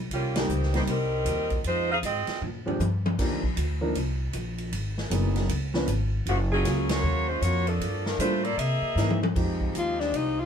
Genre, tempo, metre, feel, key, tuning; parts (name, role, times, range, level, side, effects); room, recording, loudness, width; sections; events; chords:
jazz, big band swing; 156 BPM; 4/4; swing 63% on 8ths; F minor; A4 = 437 Hz
upright bass; bass; 0.0-10.5 s; Gb1 to C3; -28 LUFS; equal
mellow saxophone section; melody; 0.1-2.4, 6.3-9.2 s; Db3 to F5; -27 LUFS; equal
swinging big-band drum kit; drums; 0.1-10.2 s; crash cymbal, hi-hat, kick drum, ride cymbal, snare drum, toms; -32 LUFS; equal
warm grand piano; accompaniment; 0.3-10.4 s; E3 to F5; -30 LUFS; equal
clear saxophone section; sustained chords; 9.4-10.5 s; F3 to G4; -38 LUFS; left 2 dB
breathy alto saxophone; melody; 9.8-10.5 s; D4 to F4; -26 LUFS; left 4 dB
moderate studio reverb, RT60 0.6 s; band playing live in one room; -24 LUFS; side -8 dB against mid
0.0-9.3 A section; 9.3-10.5 B section
band accent 0.3, 6.8; drum fill 2.4-3.2, 9.0-9.3; alto saxophone solo 9.3-10.5
0.1 Cm7; 1.6 Fm7; 2.4 Bb13; 3.2 Ebmaj9; 4.7 Abm9; 5.5 Db7b9; 6.3 Gbmaj7; 7.8 Gm9; 8.6 C7alt; 9.3 Fm9